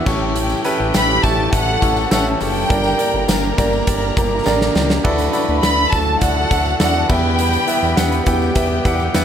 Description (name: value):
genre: piano-driven pop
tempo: 102 BPM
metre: 4/4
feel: straight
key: D major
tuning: A4 = 440 Hz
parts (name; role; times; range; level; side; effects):
- warm studio violin section; second line; 0.0-9.2 s; G4 to B5; -25 LUFS; left 2 dB; none
- warm concert grand piano; accompaniment; 0.0-9.2 s; G2 to G5; -20 LUFS; right 2 dB; none
- percussive tonewheel organ; sustained chords; 0.0-9.2 s; D3 to G4; -30 LUFS; equal; none
- chorused synth bass; bass; 0.1-9.2 s; F#1 to E2; -21 LUFS; equal; none
- huge arena drum kit; drums; 0.1-9.2 s; crash cymbal, hi-hat, kick drum, snare drum; -20 LUFS; equal; none
- tambourine; percussion; 0.1-9.2 s; none; -34 LUFS; left 7 dB; none
- warm studio violin section; melody; 1.0-8.2 s; F#5 to B5; -20 LUFS; equal; none
room: light reverb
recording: none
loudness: -14 LUFS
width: side -8 dB against mid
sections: 0.0-9.2 A section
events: drum fill 4.5-5.0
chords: 0.1 A7; 2.7 Gm; 5.0 Dadd9; 7.1 Em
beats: | 0.36 0.95 1.53 2.12 | 2.71 3.29 3.88 4.46 | 5.05 5.63 6.22 6.80 | 7.39 7.97 8.56 9.14